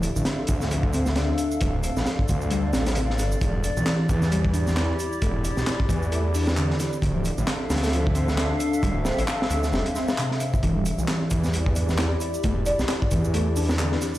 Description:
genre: breakbeat, breaks.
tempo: 133 BPM.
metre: 4/4.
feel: swing 58% on 16ths.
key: E phrygian.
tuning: A4 = 439 Hz.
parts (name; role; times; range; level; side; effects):
warbly tape-like pad; sustained chords; 0.0-14.2 s; D4 to F5; -30 LUFS; left 1 dB; chorus, built-in reverb, sidechain pumping.
detuned saw bass; bass; 0.0-14.0 s; D1 to E2; -25 LUFS; equal; none.
crunchy breakbeat drum kit; drums; 0.0-14.1 s; hi-hat, kick drum, snare drum; -26 LUFS; equal; none.
electronic shaker and handclaps; drums; 0.0-14.2 s; none; -35 LUFS; right 1 dB; none.
overdriven synth lead; riff; 0.2-14.2 s; C3 to E4; -28 LUFS; equal; tube saturation, analog chorus, cassette tape, dub echo.
room: moderate studio reverb, RT60 0.6 s.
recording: played on a big sound system in a bare room, large studio reverb.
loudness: -21 LUFS.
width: side -15 dB against mid.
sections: 0.0-14.2 A section.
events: none.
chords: 0.0 Dmadd9; 3.4 Em7; 7.0 Dmadd9; 10.6 Em7.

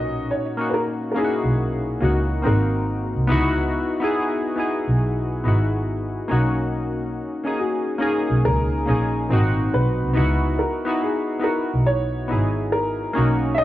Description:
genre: lo-fi hip hop.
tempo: 70 BPM.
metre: 4/4.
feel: swing 65% on 16ths.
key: C# dorian.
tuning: A4 = 440 Hz.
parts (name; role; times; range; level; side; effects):
dark upright piano; melody; 0.0-13.6 s; F#4 to E5; -26 LUFS; equal; low-pass filter, plate reverb.
warm analog keys; accompaniment; 0.0-13.6 s; A#2 to G#4; -23 LUFS; left 1 dB; chorus, cassette tape, low-pass filter, plate reverb.
dark double bass; bass; 0.0-13.6 s; G#1 to C#2; -22 LUFS; right 1 dB; none.
room: moderate studio reverb, RT60 0.5 s.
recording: cassette tape.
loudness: -19 LUFS.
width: side -14 dB against mid.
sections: 0.0-13.6 A section.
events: none.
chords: 0.0 Bmaj9; 2.4 G#7; 3.3 C#m11; 6.3 Bmaj9; 9.3 G#7; 10.2 C#m11.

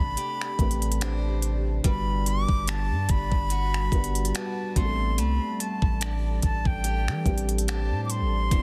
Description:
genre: contemporary R&B.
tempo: 72 BPM.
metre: 4/4.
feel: swing 54% on 16ths.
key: A dorian.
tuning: A4 = 439 Hz.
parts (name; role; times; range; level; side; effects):
breathy silver concert flute; melody; 0.0-8.6 s; G5 to D6; -34 LUFS; equal; delay.
dark concert grand piano; accompaniment; 0.0-8.6 s; E3 to B4; -38 LUFS; equal; none.
deep dark ambient pad; sustained chords; 0.0-8.6 s; C3 to A5; -42 LUFS; equal; chorus, built-in reverb.
picked acoustic archtop guitar; arpeggios; 0.0-8.6 s; D3 to C5; -38 LUFS; equal; delay.
long sustained 808-style bass; bass; 0.0-8.6 s; D1 to E3; -29 LUFS; equal; none.
trap drum kit; drums; 0.2-8.6 s; finger snaps, hi-hat, kick drum; -29 LUFS; equal; overdrive, soft clipping on snare.
room: little or no reverb.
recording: dense, heavily limited modern master.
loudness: -26 LUFS.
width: mono.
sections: 0.0-8.6 A section.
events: none.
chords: 0.0 Am11; 1.8 Gmaj7; 4.8 Am11.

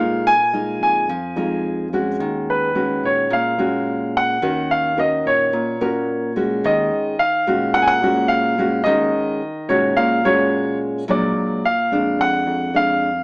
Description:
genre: bossa nova.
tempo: 108 BPM.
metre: 4/4.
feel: straight.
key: Eb minor.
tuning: A4 = 440 Hz.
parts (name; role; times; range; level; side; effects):
warm baby grand piano; melody; 0.0-13.2 s; Cb5 to Ab5; -18 LUFS; equal; plate reverb.
nylon-string guitar; accompaniment; 0.0-13.1 s; Bb2 to Bb4; -21 LUFS; equal; none.
bell-like tine electric piano; bass; 0.0-13.2 s; Bb1 to Bb2; -28 LUFS; equal; none.
room: moderate studio reverb, RT60 0.6 s.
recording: small speaker sound.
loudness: -16 LUFS.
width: side -31 dB against mid.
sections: 0.0-6.6 A section; 6.6-13.2 B section.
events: none.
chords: 0.0 Bb7sus4; 2.2 Ebm11; 11.1 Bb7b13.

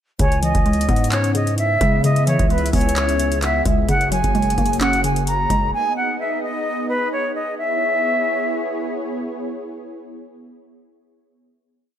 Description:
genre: hip hop, trap.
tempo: 130 BPM.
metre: 4/4.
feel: half-time.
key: C# dorian.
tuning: A4 = 440 Hz.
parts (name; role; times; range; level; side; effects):
silver concert flute; melody; 0.2-8.9 s; B4 to A#5; -21 LUFS; equal; none.
hollow clarinet-like synth lead; second line; 0.2-3.9 s; E5 to G#5; -29 LUFS; right 6 dB; chorus, tape echo.
hollow square pluck; accompaniment; 0.2-5.7 s; C#3 to C#4; -23 LUFS; left 2 dB; chorus.
warm analog pad; sustained chords; 0.2-11.3 s; A#3 to E5; -28 LUFS; right 1 dB; chorus.
distorted 808-style bass; bass; 0.2-5.7 s; F#1 to C#3; -22 LUFS; equal; distortion.
booming analog drum machine; drums; 0.2-5.7 s; handclaps, hi-hat, kick drum; -22 LUFS; equal; none.
room: light reverb, digital ambience.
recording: none.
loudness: -17 LUFS.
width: side -10 dB against mid.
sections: 0.2-7.6 hook; 7.6-11.3 final chord.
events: none.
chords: 0.2 C#m7; 3.9 F#add9; 5.7 G#m; 7.6 C#m7.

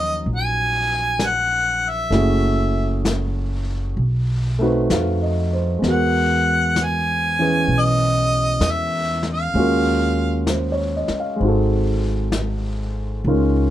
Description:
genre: jazz ballad.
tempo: 65 BPM.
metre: 4/4.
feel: swing 67% on 8ths.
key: unclear.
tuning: A4 = 440 Hz.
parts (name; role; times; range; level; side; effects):
warm harmonica; melody; 0.0-10.5 s; D#5 to G#5; -20 LUFS; equal; none.
warm grand piano; accompaniment; 0.0-13.7 s; Eb3 to F5; -22 LUFS; equal; none.
upright bass; bass; 0.0-13.7 s; Gb1 to F2; -21 LUFS; equal; none.
vintage brush drum kit; drums; 0.3-13.7 s; brushed snare drum, hi-hat, snare drum; -28 LUFS; left 2 dB; none.
room: light reverb.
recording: dark, warm production.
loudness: -17 LUFS.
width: side -12 dB against mid.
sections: 0.0-13.7 A section.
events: none.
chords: 0.0 Ebm9; 2.1 Gbm9; 4.0 Cb7b9; 5.8 Emaj9#11; 9.5 Ebm11; 11.4 Ab7b9.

